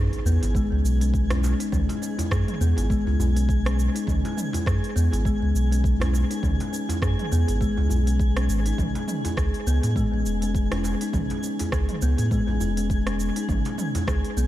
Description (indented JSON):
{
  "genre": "organic downtempo",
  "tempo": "102 BPM",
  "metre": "4/4",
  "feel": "swing 57% on 16ths",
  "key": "C# minor",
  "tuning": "A4 = 442 Hz",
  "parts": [
    { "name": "kalimba", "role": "arpeggios", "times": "0.0-14.5 s", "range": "G#3 to G#4", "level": "-27 LUFS", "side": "left 3 dB", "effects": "analog delay" },
    { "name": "warm sub bass", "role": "bass", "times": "0.0-14.5 s", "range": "E1 to A2", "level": "-23 LUFS", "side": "equal", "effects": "sidechain pumping" },
    { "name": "impact", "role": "sound effects", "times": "0.0-1.7 s", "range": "none", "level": "-35 LUFS", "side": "equal", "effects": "none" },
    { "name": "twinkling granular texture", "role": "texture", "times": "0.1-14.5 s", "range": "G#4 to G#5", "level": "-37 LUFS", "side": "right 1 dB", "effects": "built-in reverb" },
    { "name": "organic electronic drum kit", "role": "drums", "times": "0.1-14.5 s", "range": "hi-hat, rim click, shaker, toms", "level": "-33 LUFS", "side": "right 1 dB", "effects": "overdrive, tape echo" },
    { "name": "djembe", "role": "percussion", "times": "0.4-14.2 s", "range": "none", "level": "-33 LUFS", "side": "right 2 dB", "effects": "none" },
    { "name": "electronic kick drum", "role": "drums", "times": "0.5-14.2 s", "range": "none", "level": "-27 LUFS", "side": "equal", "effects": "overdrive" }
  ],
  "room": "little or no reverb",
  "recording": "echo-heavy mix",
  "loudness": "-21 LUFS",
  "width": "side -14 dB against mid",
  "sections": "0.0-14.5 A section",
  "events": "impact 0.0-1.7",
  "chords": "0.0 C#7(no3); 8.8 Amaj7; 13.5 G#m"
}